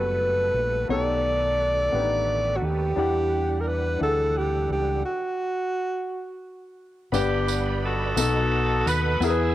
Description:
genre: slow gospel.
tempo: 58 BPM (dotted quarters).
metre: 6/8.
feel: straight.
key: unclear.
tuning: A4 = 439 Hz.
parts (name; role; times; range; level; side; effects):
warm alto saxophone; melody; 0.0-6.4 s; F#4 to D5; -24 LUFS; equal; none.
warm baby grand piano; accompaniment; 0.0-9.5 s; G2 to F#5; -28 LUFS; left 5 dB; cassette tape.
bright tonewheel organ; sustained chords; 0.0-9.5 s; D#3 to E6; -35 LUFS; right 7 dB; slow rotary speaker, overdrive, chorus vibrato, cassette tape.
fingered electric bass; bass; 0.0-9.5 s; F#1 to E2; -28 LUFS; right 1 dB; none.
clear saxophone section; melody; 7.1-9.5 s; B3 to B4; -25 LUFS; equal; none.
tambourine; percussion; 7.1-9.5 s; none; -32 LUFS; right 11 dB; none.
room: moderate spring reverb, RT60 2.6 s.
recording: home recording on cassette.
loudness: -22 LUFS.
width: side -14 dB against mid.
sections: 0.0-7.1 A section; 7.1-9.5 B section.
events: stop 5.1-7.1.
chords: 0.0 Gmaj9; 0.9 B7alt; 3.0 Em9; 5.1 N.C.; 7.1 G; 8.2 B7.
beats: | 0.89 1.93 | 2.97 4.01 | 5.05 6.09 | 7.13 8.17 | 9.21.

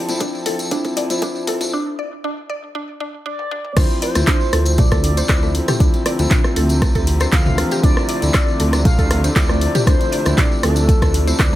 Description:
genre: afro house.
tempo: 118 BPM.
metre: 4/4.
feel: straight.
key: D minor.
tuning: A4 = 441 Hz.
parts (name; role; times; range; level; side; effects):
muted studio string section; sustained chords; 0.0-11.6 s; C3 to A4; -26 LUFS; right 1 dB; sidechain pumping.
mallet-like synth pluck; arpeggios; 0.0-11.6 s; A3 to D5; -27 LUFS; equal; chorus, phaser, sidechain pumping, tape echo.
felt-muted upright piano; stabs; 0.0-11.6 s; E3 to E4; -24 LUFS; left 2 dB; sidechain pumping, tape echo.
deep house drum kit; drums; 0.1-11.6 s; crash cymbal, handclaps, hi-hat, rim click, toms; -22 LUFS; left 1 dB; high-pass filter on snare, high-pass filter on hats, high-pass filter on toms, high-pass filter on cymbals, high-pass filter on room.
tambourine; percussion; 0.1-11.6 s; none; -29 LUFS; left 2 dB; none.
electronic kick drum; drums; 0.2-11.5 s; none; -16 LUFS; equal; overdrive, high-pass filter on kick, high-pass filter on room.
expressive synth lead; melody; 3.3-11.6 s; A4 to F5; -26 LUFS; left 1 dB; wide subtle chorus, vintage 12-bit sampler grit, tape echo.
dark detuned saw bass; bass; 3.8-11.6 s; D2; -19 LUFS; equal; sidechain pumping.
room: light reverb, digital ambience.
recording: high-pass filter.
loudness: -14 LUFS.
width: side -14 dB against mid.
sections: 0.0-3.8 A section; 3.8-11.6 B section.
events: build-up 0.0-3.8; drum fill 0.0-1.7, 3.4-3.8; filter sweep on synth arpeggio sound 0.0-3.8; filter sweep 0.0-3.8; break 1.7-3.8; drop 3.8-11.6.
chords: 0.0 Dm7.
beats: 0.21 0.72 1.23 | 1.73 2.24 2.75 3.26 | 3.77 4.28 4.79 5.29 | 5.80 6.31 6.82 7.33 | 7.84 8.34 8.85 9.36 | 9.87 10.38 10.89 11.39.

